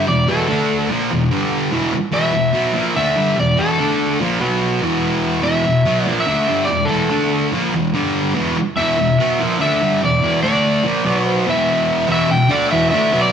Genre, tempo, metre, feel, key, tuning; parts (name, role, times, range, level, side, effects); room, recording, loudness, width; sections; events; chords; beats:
rock; 145 BPM; 4/4; straight; E minor; A4 = 436 Hz
overdriven slide guitar; melody; 0.0-13.3 s; A4 to G5; -18 LUFS; equal
thick fuzz guitar; riff; 0.0-13.3 s; E2 to D4; -16 LUFS; equal; distortion
wet stone room reverb, RT60 1.3 s; band playing live in one room; -15 LUFS; side -8 dB against mid
0.0-12.1 A section; 12.1-13.3 B section
0.5 D5; 0.9 E5; 1.3 G5; 1.7 Em; 3.8 D5; 4.2 A#5; 4.4 B5; 4.8 Em; 7.1 D5; 7.5 E5; 7.9 G5; 8.4 Em; 10.4 D5; 10.9 A#; 11.1 B5; 11.5 E5
0.07 | 0.49 0.90 1.31 1.73 | 2.14 2.56 2.97 3.38 | 3.80 4.21 4.62 5.04 | 5.45 5.87 6.28 6.70 | 7.11 7.53 7.94 8.36 | 8.77 9.19 9.60 10.02 | 10.44 10.85 11.27 11.68 | 12.10 12.52 12.93